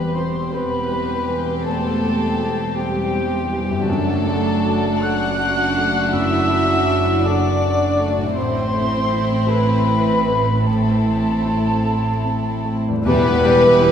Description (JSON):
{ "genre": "cinematic, emotional film score for orchestra", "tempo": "53 BPM (dotted quarters)", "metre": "6/8", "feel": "rubato", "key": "unclear", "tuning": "A4 = 440 Hz", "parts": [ { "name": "warm chamber violin section", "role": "melody", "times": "0.0-13.9 s", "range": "G4 to F#5", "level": "-24 LUFS", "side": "left 4 dB", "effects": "none" }, { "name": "silver concert flute", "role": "second line", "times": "0.0-12.7 s", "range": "G5 to F#6", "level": "-24 LUFS", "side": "left 1 dB", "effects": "none" }, { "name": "warm symphonic violin section", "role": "second line", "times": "0.0-13.9 s", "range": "G3 to G4", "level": "-26 LUFS", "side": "left 2 dB", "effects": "none" }, { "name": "clear grand piano", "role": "accompaniment", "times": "0.0-13.9 s", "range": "E2 to A4", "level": "-24 LUFS", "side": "equal", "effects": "none" }, { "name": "dark symphonic viola section", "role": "accompaniment", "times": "0.0-13.9 s", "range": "G3 to B4", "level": "-24 LUFS", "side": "right 2 dB", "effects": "none" }, { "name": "concert harp", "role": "arpeggios", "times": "0.0-13.9 s", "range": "E2 to B4", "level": "-30 LUFS", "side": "left 5 dB", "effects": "none" }, { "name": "dark symphonic double bass section", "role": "bass", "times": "0.0-13.9 s", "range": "E1 to A1", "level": "-25 LUFS", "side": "right 3 dB", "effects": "none" }, { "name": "warm symphonic cello section", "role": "bass", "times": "0.0-13.9 s", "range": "E2 to A2", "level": "-25 LUFS", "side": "right 2 dB", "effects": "none" }, { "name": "warm clarinet", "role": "second line", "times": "13.0-13.9 s", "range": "G4", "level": "-26 LUFS", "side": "left 2 dB", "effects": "none" }, { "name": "mellow cor anglais", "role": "second line", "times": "13.1-13.9 s", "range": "G4", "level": "-25 LUFS", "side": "left 1 dB", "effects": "none" }, { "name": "mellow French horn section", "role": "sustained chords", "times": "13.1-13.9 s", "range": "E3 to B4", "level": "-24 LUFS", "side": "left 4 dB", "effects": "none" }, { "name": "timpani", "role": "percussion", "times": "13.1-13.9 s", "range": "E2", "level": "-23 LUFS", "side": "equal", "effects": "none" } ], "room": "wet concert hall reverb, RT60 2.2 s", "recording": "heard from further back in the room", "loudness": "-16 LUFS", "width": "side -8 dB against mid", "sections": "0.0-13.1 A section", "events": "none", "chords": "0.0 C/E; 3.9 D/F#; 8.4 Am; 13.1 Em" }